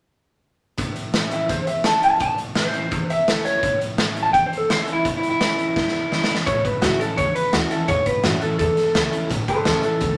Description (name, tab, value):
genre	rockabilly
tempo	169 BPM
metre	4/4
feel	straight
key	A major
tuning	A4 = 440 Hz
part	picked steel-string acoustic guitar	accompaniment	0.8-10.2 s	E2 to E4	-30 LUFS	equal	none
part	raw garage drum kit	drums	0.8-10.1 s	hi-hat, kick drum, snare drum	-26 LUFS	equal	none
part	electric guitar through a small old amp	melody	1.3-10.2 s	C#4 to A5	-23 LUFS	equal	phaser
part	upright bass	bass	6.5-10.1 s	A1 to G2	-32 LUFS	equal	none
room	moderate studio reverb, RT60 0.7 s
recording	none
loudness	-21 LUFS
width	mono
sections	0.8-6.5 A section; 6.5-10.2 B section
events	drum fill 5.8-6.5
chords	0.8 A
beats	| 0.78 1.14 1.50 1.85 | 2.21 2.56 2.92 3.27 | 3.63 3.98 4.34 4.70 | 5.05 5.41 5.76 6.12 | 6.47 6.83 7.18 7.54 | 7.89 8.25 8.60 8.96 | 9.31 9.67 10.02